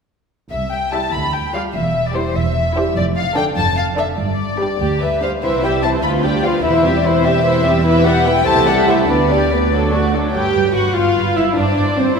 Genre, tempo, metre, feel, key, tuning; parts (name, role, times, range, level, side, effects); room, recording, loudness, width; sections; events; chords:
quick classical-period movement for string orchestra; 98 BPM (dotted quarters); 6/8; straight; C major, G major from 7.9 s; A4 = 440 Hz
warm symphonic violin section; melody; 0.5-12.2 s; B4 to B5; -20 LUFS; left 4 dB
dark symphonic cello section; bass; 0.5-12.1 s; C2 to G2; -22 LUFS; right 2 dB
warm symphonic double bass section; bass; 0.5-12.1 s; E1 to D2; -23 LUFS; right 3 dB
warm symphonic violin section; second line; 0.9-12.2 s; E4 to G5; -20 LUFS; left 1 dB
rich studio viola section; accompaniment; 0.9-12.2 s; D3 to G4; -19 LUFS; right 1 dB
wet concert hall reverb, RT60 1.9 s; minimal, uncompressed stereo recording; -14 LUFS; side -5 dB against mid
0.5-10.4 A section; 10.4-12.2 B section
0.5 C; 1.1 G5/D; 1.7 C/E; 3.0 Dm/F; 4.2 G; 5.4 C; 6.0 G7/D; 6.6 C/E; 7.9 Em; 8.5 Am7/C; 9.1 G/D; 9.7 D; 10.4 G; 11.6 C5/G